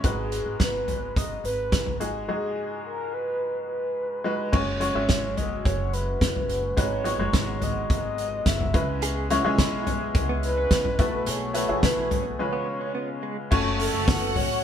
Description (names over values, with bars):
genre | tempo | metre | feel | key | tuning
piano-driven pop | 107 BPM | 4/4 | straight | C# minor from 4.5 s | A4 = 440 Hz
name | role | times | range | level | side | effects
bright upright piano | accompaniment | 0.0-14.6 s | G#2 to E5 | -29 LUFS | left 2 dB | none
upright bass | bass | 0.0-14.6 s | F#1 to C#2 | -32 LUFS | equal | none
loose indie drum kit | drums | 0.0-14.5 s | crash cymbal, hi-hat, kick drum, snare drum, toms | -25 LUFS | equal | none
mellow horn-like synth lead | melody | 0.1-14.6 s | G#4 to E5 | -29 LUFS | right 1 dB | chorus
warm analog pad | sustained chords | 4.5-14.6 s | C#3 to F#4 | -38 LUFS | left 1 dB | chorus
direct-recorded clean electric guitar | riff | 9.0-14.5 s | G#3 to G#4 | -34 LUFS | right 6 dB | tremolo
warm studio violin section | second line | 13.5-14.6 s | F#4 to F#5 | -30 LUFS | left 2 dB | none
room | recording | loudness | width
moderate studio reverb, RT60 0.9 s | band playing live in one room | -23 LUFS | side -9 dB against mid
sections
0.0-4.5 A section; 4.5-13.5 B section; 13.5-14.6 C section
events
break 2.3-4.5, 12.4-13.5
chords
0.0 G#m7; 4.5 F#sus2; 6.8 G#m7; 8.7 C#m7; 11.0 B7sus4; 12.4 C#7; 13.5 F#m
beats
| 0.04 0.60 1.16 1.72 | 2.29 2.85 3.41 3.97 | 4.53 5.09 5.65 6.21 | 6.78 7.34 7.90 8.46 | 9.02 9.58 10.14 10.71 | 11.27 11.83 12.39 12.95 | 13.51 14.07 14.63